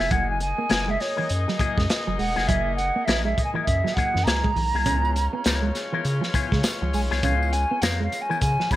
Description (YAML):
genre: funk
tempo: 101 BPM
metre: 4/4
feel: swing 60% on 16ths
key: unclear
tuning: A4 = 440 Hz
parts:
  - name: mellow hollow silver concert flute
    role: melody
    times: 0.0-8.8 s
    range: Db5 to Cb6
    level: -26 LUFS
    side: right 2 dB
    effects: none
  - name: electric guitar with an envelope filter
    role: accompaniment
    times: 0.0-8.8 s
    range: F3 to Bb4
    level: -30 LUFS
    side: left 7 dB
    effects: spring reverb
  - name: round analog bass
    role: bass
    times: 0.0-8.8 s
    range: Fb1 to Db3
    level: -26 LUFS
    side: equal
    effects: none
  - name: crunchy breakbeat drum kit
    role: drums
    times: 0.0-8.8 s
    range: hi-hat, kick drum, snare drum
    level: -26 LUFS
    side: equal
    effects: none
  - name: clear horn section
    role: second line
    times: 0.1-8.8 s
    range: Ab3 to Eb5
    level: -33 LUFS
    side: left 3 dB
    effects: none
  - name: mellow electric guitar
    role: riff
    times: 0.1-8.8 s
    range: Fb3 to Db4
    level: -31 LUFS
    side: right 4 dB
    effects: spring reverb
  - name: tambourine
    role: percussion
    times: 4.9-8.8 s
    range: none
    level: -41 LUFS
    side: left 3 dB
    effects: none
room: light reverb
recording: none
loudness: -21 LUFS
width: side -14 dB against mid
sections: 0.0-8.8 A section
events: flute solo 0.0-8.8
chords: 0.1 Gb9; 4.9 Db7#9